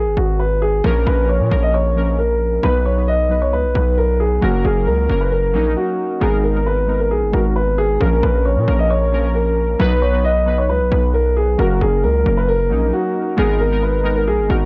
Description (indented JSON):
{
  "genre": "hip hop, trap",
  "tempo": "134 BPM",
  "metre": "4/4",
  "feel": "half-time",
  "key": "Bb phrygian",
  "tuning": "A4 = 440 Hz",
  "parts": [
    { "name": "dark grand piano", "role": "melody", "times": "0.0-14.7 s", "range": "Gb4 to Eb5", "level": "-21 LUFS", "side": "equal", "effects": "low-pass filter" },
    { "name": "distorted 808-style bass", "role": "bass", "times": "0.0-14.7 s", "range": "Gb1 to Bb2", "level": "-20 LUFS", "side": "equal", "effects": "distortion" },
    { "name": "warbly lo-fi synth keys", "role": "accompaniment", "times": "0.8-14.7 s", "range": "F3 to B4", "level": "-25 LUFS", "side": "equal", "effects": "chorus, low-pass filter" }
  ],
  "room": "studio reverb",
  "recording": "dry, gritty hardware recording, cassette tape",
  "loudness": "-17 LUFS",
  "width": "mono",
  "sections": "0.0-8.0 A section; 8.0-14.7 B section",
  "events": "none",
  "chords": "0.0 N.C.; 0.8 Bbm; 2.6 B; 4.4 Gb; 6.2 Abmadd9; 8.0 Bbm; 9.8 B; 11.6 Gb; 13.4 Abmadd9"
}